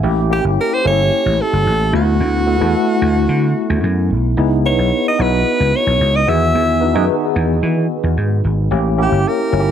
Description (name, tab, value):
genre	polished 1980s jazz-funk pop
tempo	111 BPM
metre	4/4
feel	straight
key	unclear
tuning	A4 = 435 Hz
part	mellow tine electric piano	accompaniment	0.0-9.7 s	D#3 to B4	-18 LUFS	left 1 dB	overdrive, fast stereo tremolo, lush chorus
part	vintage slap bass	bass	0.0-9.7 s	G1 to E3	-16 LUFS	equal	none
part	bright alto saxophone	melody	0.3-9.7 s	F#4 to E5	-18 LUFS	equal	none
room	light reverb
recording	none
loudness	-13 LUFS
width	side -9 dB against mid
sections	0.0-9.7 A section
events	none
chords	0.0 A7b9; 1.9 D69; 4.4 C#m9; 6.3 Emaj9; 8.7 A7b9